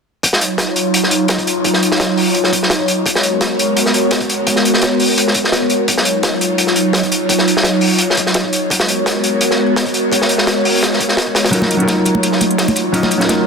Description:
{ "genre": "liquid drum and bass", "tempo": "170 BPM", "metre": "4/4", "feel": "swing 54% on 16ths", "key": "Eb minor", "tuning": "A4 = 442 Hz", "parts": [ { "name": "airy breathy pad", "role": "sustained chords", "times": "0.2-13.5 s", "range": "Gb3 to Db5", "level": "-16 LUFS", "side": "equal", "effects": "chorus, sidechain pumping" }, { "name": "crunchy breakbeat drum kit", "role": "drums", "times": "0.2-13.4 s", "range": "hi-hat, snare drum", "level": "-15 LUFS", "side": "equal", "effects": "high-pass filter on hats, high-pass filter on snare, high-pass filter on room" }, { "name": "electronic kick drum", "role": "drums", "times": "0.2-13.0 s", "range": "none", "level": "-28 LUFS", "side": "equal", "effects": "high-pass filter on kick" }, { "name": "hollow-body jazz guitar", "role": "accompaniment", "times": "11.5-13.5 s", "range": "Gb3 to Eb5", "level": "-15 LUFS", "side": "equal", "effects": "ping-pong delay" }, { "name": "electronic hi-hat", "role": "drums", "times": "11.5-13.4 s", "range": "none", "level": "-21 LUFS", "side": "right 1 dB", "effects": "none" }, { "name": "congas", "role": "percussion", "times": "11.6-13.4 s", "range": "none", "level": "-21 LUFS", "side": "right 1 dB", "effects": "none" } ], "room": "moderate huge ambient reverb, RT60 4.2 s", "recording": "dense, heavily limited modern master", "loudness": "-12 LUFS", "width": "side -5 dB against mid", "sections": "0.2-13.5 A section", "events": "none", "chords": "0.2 Ebm9; 3.1 Abm11; 5.9 Ebm9; 8.7 Abm11; 11.5 Ebm9", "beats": "| 0.23 0.59 0.94 1.29 | 1.65 2.00 2.35 2.71 | 3.06 3.41 3.76 4.12 | 4.47 4.82 5.18 5.53 | 5.88 6.24 6.59 6.94 | 7.29 7.65 8.00 8.35 | 8.71 9.06 9.41 9.76 | 10.12 10.47 10.82 11.18 | 11.53 11.88 12.23 12.59 | 12.94 13.29" }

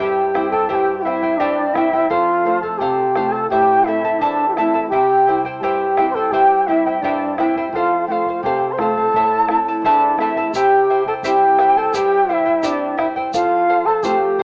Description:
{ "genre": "andean folk, Andean ensemble", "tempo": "85 BPM", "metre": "2/4", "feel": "straight", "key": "unclear", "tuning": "A4 = 439 Hz", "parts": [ { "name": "large quena", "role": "melody", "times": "0.0-14.4 s", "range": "D5 to C6", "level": "-18 LUFS", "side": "equal", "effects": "cassette tape, analog delay" }, { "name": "mellow large quena", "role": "second line", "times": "0.0-14.4 s", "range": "D4 to C5", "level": "-19 LUFS", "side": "equal", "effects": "cassette tape" }, { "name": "charango", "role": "accompaniment", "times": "0.0-14.4 s", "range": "E4 to A5", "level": "-21 LUFS", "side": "equal", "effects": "cassette tape" }, { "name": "nylon-string guitar", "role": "accompaniment", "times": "0.0-14.4 s", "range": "E2 to F4", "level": "-25 LUFS", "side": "equal", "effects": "cassette tape" }, { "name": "bombo", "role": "percussion", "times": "0.3-14.4 s", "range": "none", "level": "-30 LUFS", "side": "equal", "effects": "none" }, { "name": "tube shaker", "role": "percussion", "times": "10.5-14.2 s", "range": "none", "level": "-31 LUFS", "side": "equal", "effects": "none" } ], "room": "wet spring reverb, RT60 1.1 s, small room ambience", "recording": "home recording on cassette, small speaker sound", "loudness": "-14 LUFS", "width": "side -39 dB against mid", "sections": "0.0-10.5 A section; 10.5-14.4 A section", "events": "none", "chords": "0.0 C; 2.1 F; 3.5 Am; 4.9 C; 7.7 F; 9.1 Am; 10.5 C; 13.3 F", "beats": "| 0.69 1.39 | 2.10 2.81 | 3.51 4.21 | 4.92 5.62 | 6.33 7.03 | 7.73 8.44 | 9.14 9.84 | 10.54 11.24 | 11.94 12.64 | 13.34 14.03" }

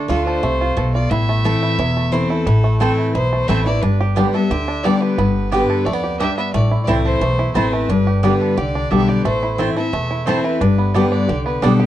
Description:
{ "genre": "bluegrass", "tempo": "177 BPM", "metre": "4/4", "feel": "straight", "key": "A minor", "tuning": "A4 = 438 Hz", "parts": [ { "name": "bluegrass banjo", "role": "melody", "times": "0.0-11.9 s", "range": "A3 to A4", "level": "-24 LUFS", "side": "right 4 dB", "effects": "none" }, { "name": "clear fiddle", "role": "melody", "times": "0.0-11.9 s", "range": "G4 to E5", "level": "-24 LUFS", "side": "left 2 dB", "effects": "none" }, { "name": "picked steel-string acoustic guitar", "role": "accompaniment", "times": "0.0-11.9 s", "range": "E2 to G4", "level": "-18 LUFS", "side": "left 2 dB", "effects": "none" }, { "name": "upright bass", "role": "bass", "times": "0.1-11.9 s", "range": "E1 to D2", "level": "-21 LUFS", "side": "right 1 dB", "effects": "none" }, { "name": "mandolin", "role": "stabs", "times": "2.8-11.7 s", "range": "B3 to A5", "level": "-22 LUFS", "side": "right 4 dB", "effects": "none" } ], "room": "light reverb", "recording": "worn, warbling old tape, cassette tape, warbly pitch drift", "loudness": "-15 LUFS", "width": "side -12 dB against mid", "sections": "0.0-11.9 A section", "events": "none", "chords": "0.0 Dm; 1.1 Am; 3.8 G; 6.5 Am; 7.9 G; 9.3 Am; 10.6 G", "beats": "0.10 0.43 0.77 | 1.11 1.45 1.79 2.13 | 2.47 2.81 3.15 3.49 | 3.83 4.17 4.51 4.85 | 5.19 5.53 5.86 6.20 | 6.54 6.88 7.22 7.56 | 7.90 8.23 8.57 8.91 | 9.25 9.59 9.93 10.27 | 10.61 10.94 11.28 11.62" }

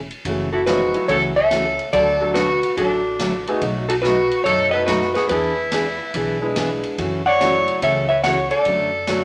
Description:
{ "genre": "country, western swing", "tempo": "143 BPM", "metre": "4/4", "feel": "swing 66% on 8ths", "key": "unclear", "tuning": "A4 = 439 Hz", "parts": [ { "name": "hollow-body jazz guitar", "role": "melody", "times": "0.0-9.2 s", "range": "F#4 to F#5", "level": "-21 LUFS", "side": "equal", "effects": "none" }, { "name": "upright bass", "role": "bass", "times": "0.0-9.2 s", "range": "F#1 to F#2", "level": "-34 LUFS", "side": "equal", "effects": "none" }, { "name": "swinging big-band drum kit", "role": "drums", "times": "0.1-9.2 s", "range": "hi-hat, kick drum, ride cymbal, snare drum", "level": "-33 LUFS", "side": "equal", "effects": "none" }, { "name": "picked steel-string acoustic guitar", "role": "accompaniment", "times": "0.3-9.2 s", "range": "B2 to G#4", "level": "-27 LUFS", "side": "equal", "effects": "none" }, { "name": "rich fiddle", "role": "second line", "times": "0.5-9.2 s", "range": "D4 to C#5", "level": "-26 LUFS", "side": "equal", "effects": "none" }, { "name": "clear upright piano", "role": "accompaniment", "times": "0.7-9.2 s", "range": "C#3 to A4", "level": "-28 LUFS", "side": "equal", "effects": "none" } ], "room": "wet studio reverb, RT60 0.5 s", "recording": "none", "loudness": "-19 LUFS", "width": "mono", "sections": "0.3-9.2 A section", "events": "none", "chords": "0.3 F#m7; 1.9 D; 3.6 B7; 5.3 E7; 7.0 F#m7; 8.7 Dmaj7/F#", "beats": "| 0.25 0.67 1.09 1.51 | 1.94 2.36 2.78 3.20 | 3.62 4.04 4.46 4.88 | 5.30 5.72 6.14 6.56 | 6.98 7.40 7.82 8.24 | 8.66 9.08" }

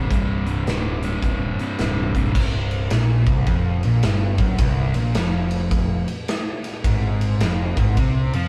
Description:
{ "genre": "blues rock power trio and southern rock", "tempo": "107 BPM", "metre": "4/4", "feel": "swing 64% on 8ths", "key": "C minor", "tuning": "A4 = 440 Hz", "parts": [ { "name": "crunchy overdriven guitar", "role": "riff", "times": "0.0-8.5 s", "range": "C2 to F3", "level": "-24 LUFS", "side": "equal", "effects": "none" }, { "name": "fuzz fingered electric bass", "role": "bass", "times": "0.0-8.5 s", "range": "C1 to F2", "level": "-27 LUFS", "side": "equal", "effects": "overdrive" }, { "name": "big rock drum kit", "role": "drums", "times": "0.1-8.4 s", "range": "crash cymbal, hi-hat, kick drum, ride cymbal, snare drum", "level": "-26 LUFS", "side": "equal", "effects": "none" } ], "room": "moderate stone room reverb, RT60 0.9 s", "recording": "band playing live in one room, cassette tape", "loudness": "-21 LUFS", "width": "mono", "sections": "0.0-2.4 A section; 2.4-8.5 B section", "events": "none", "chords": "0.0 Cm; 2.4 C5; 6.8 Ab5", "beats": "| 0.11 0.67 1.23 1.79 | 2.35 2.91 3.48 4.04 | 4.60 5.16 5.72 6.28 | 6.85 7.41 7.97" }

